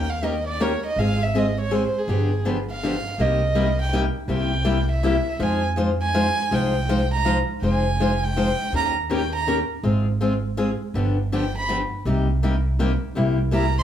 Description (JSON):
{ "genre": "acoustic string swing (jazz manouche)", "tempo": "162 BPM", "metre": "3/4", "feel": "swing 63% on 8ths", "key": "F minor", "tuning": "A4 = 440 Hz", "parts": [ { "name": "warm violin", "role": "melody", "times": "0.0-13.8 s", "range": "Ab4 to C6", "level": "-25 LUFS", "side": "right 3 dB", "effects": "none" }, { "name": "picked steel-string acoustic guitar", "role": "accompaniment", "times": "0.0-13.6 s", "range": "C3 to C5", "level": "-23 LUFS", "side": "left 2 dB", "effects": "none" }, { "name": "upright bass", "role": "bass", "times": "0.0-13.8 s", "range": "F1 to F2", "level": "-24 LUFS", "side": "right 1 dB", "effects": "none" } ], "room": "wet club reverb, RT60 0.8 s", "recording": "heard from further back in the room", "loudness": "-20 LUFS", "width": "side -10 dB against mid", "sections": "0.0-7.6 A section; 7.6-13.8 A section", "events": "violin solo 0.0-13.8", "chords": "0.0 Eb7; 1.0 Ab6; 2.1 G7b9; 3.2 Cm7; 4.3 C7; 5.4 Fm9; 8.7 Eb7; 9.8 Ab6; 10.9 G7; 12.1 Cm7; 13.2 C7" }